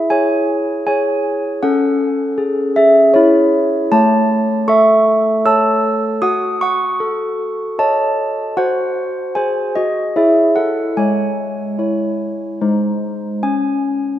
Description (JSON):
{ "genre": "classical, tune for handbells", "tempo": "72-80 BPM", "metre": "3/4", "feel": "straight", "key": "C# minor", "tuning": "A4 = 440 Hz", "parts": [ { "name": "handbells", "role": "solo", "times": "0.0-14.2 s", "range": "G#3 to E6", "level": "-13 LUFS", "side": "equal", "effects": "none" } ], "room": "wet church reverb, RT60 3.2 s", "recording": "none", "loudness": "-13 LUFS", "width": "side -12 dB against mid", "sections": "0.0-13.4 A section", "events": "none", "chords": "0.0 C#m/E; 1.6 C#m; 3.9 A; 6.2 D#m7b5/F#; 8.6 G#7/F#; 10.2 C#m/E; 11.0 C#m/G#; 12.6 G#; 13.4 C#5", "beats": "0.10 0.87 | 1.63 2.39 3.15 | 3.93 4.69 5.46 | 6.23 7.01 7.79 | 8.57 9.35 10.15 | 10.97 11.79 12.62 | 13.43" }